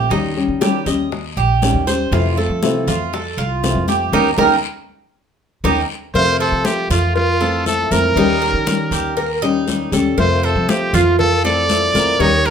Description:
latin, Cuban son and guajira; 119 BPM; 4/4; straight; F major; A4 = 440 Hz
nylon-string guitar; accompaniment; 0.0-12.5 s; C3 to G4; -20 LUFS; left 4 dB
Cuban tres; arpeggios; 0.0-12.5 s; Eb4 to F5; -20 LUFS; right 5 dB
upright bass; bass; 0.0-12.5 s; Bb1 to F3; -21 LUFS; equal
bongos and cowbell; percussion; 0.1-12.5 s; -25 LUFS; left 5 dB
congas; percussion; 0.1-12.5 s; -25 LUFS; left 2 dB
guiro; percussion; 0.1-12.5 s; -30 LUFS; left 6 dB
brilliant trumpet; melody; 6.1-12.5 s; F4 to D5; -18 LUFS; right 1 dB
moderate studio reverb, RT60 0.8 s; minimal, uncompressed stereo recording; -14 LUFS; side -7 dB against mid
0.0-6.1 A section; 6.1-12.5 B section
band accent 4.1-6.1
0.1 Eb7; 2.1 Fmaj7; 4.1 Eb7; 6.1 Fmaj7; 8.2 Eb7; 10.2 Fmaj7

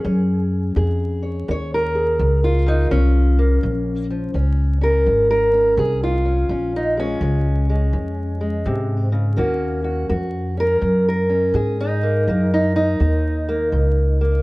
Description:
acoustic country blues, solo or duo; 83 BPM; 4/4; swing 65% on 8ths; Bb minor; A4 = 440 Hz
fingerpicked old ladder-braced acoustic guitar; melody; 0.0-14.4 s; F2 to Db5; -20 LUFS; equal; plate reverb
upright bass; bass; 0.0-14.4 s; Ab1 to Ab2; -19 LUFS; equal
light reverb; dark, warm production, vinyl crackle; -17 LUFS; side -21 dB against mid
0.0-14.4 A section
0.0 Bbm7; 9.4 Ebm7

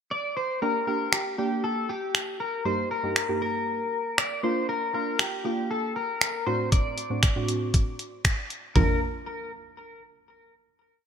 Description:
dance-pop; 118 BPM; 4/4; straight; Bb major; A4 = 436 Hz
electric guitar at the edge of break-up; melody; 0.1-9.0 s; G4 to D5; -29 LUFS; left 2 dB; analog chorus, digital delay
deep mellow chord stab; accompaniment; 0.6-9.0 s; G2 to G4; -30 LUFS; right 2 dB; chorus, sidechain pumping
detuned 8-bit digital drum machine; drums; 1.1-8.9 s; finger snaps, hi-hat, kick drum, toms; -24 LUFS; equal
moderate plate reverb, RT60 2.0 s, digital ambience; bright 1980s-style digital production; -24 LUFS; side -8 dB against mid
0.0-0.6 pickup bar; 0.6-8.8 verse; 8.8-10.8 final chord
0.0 N.C.; 0.6 Gm; 2.7 Eb/G; 4.4 Bb; 6.5 D7/A; 8.8 Bb

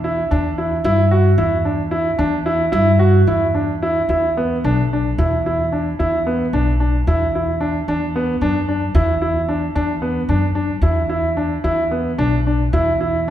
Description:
contemporary instrumental, chamber music in an uneven meter; 223 BPM (eighths); 7/8; straight; E minor; A4 = 441 Hz
warm baby grand piano; arpeggios; 0.0-13.3 s; B3 to F#4; -18 LUFS; equal
upright bass; bass; 0.0-13.3 s; B1 to G2; -19 LUFS; equal
wet recital hall reverb, RT60 1.7 s; heard from further back in the room; -16 LUFS; side -11 dB against mid
0.0-4.1 A section; 4.1-13.3 B section
0.3 Em7; 4.1 E5; 7.9 Bm/E (rootless); 11.6 E5

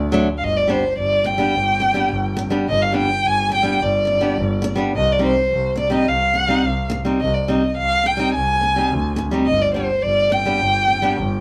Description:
klezmer; 106 BPM; 4/4; straight; G phrygian dominant; A4 = 440 Hz
dark violin; melody; 0.0-11.4 s; C5 to Ab5; -21 LUFS; equal
clear double bass; bass; 0.0-11.4 s; G1 to D2; -26 LUFS; equal
flamenco guitar; accompaniment; 0.1-11.2 s; F#3 to Eb4; -24 LUFS; equal
wet studio reverb, RT60 0.5 s; band playing live in one room, lossy compression artefacts; -19 LUFS; mono
0.4-11.4 A section
0.4 G; 4.9 Cm; 9.5 G

